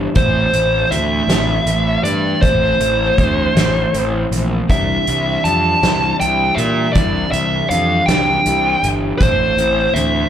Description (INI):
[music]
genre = quiet-loud alternative rock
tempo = 53 BPM (dotted quarters)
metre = 6/8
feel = straight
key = unclear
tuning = A4 = 441 Hz
[part]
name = twelve-string electric guitar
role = arpeggios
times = 0.0-10.3 s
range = A2 to E4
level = -21 LUFS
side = equal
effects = slapback echo, analog delay
[part]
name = fuzz picked electric bass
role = bass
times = 0.0-10.2 s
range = G1 to Bb2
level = -20 LUFS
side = equal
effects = overdrive
[part]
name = dark smooth lead guitar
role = melody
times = 0.2-10.3 s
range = C5 to A5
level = -16 LUFS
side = equal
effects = overdrive, slapback echo, analog delay
[part]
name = loose indie drum kit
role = drums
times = 0.2-10.1 s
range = hi-hat, kick drum, snare drum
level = -19 LUFS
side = equal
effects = none
[sound]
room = small room ambience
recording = live gig heard through the venue's PA, club reverb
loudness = -13 LUFS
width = side -10 dB against mid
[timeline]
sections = 0.0-10.3 A section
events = none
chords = 0.2 Am; 4.7 Cadd9; 9.2 Am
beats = | 0.16 1.29 | 2.43 3.56 | 4.69 5.82 | 6.95 8.08 | 9.21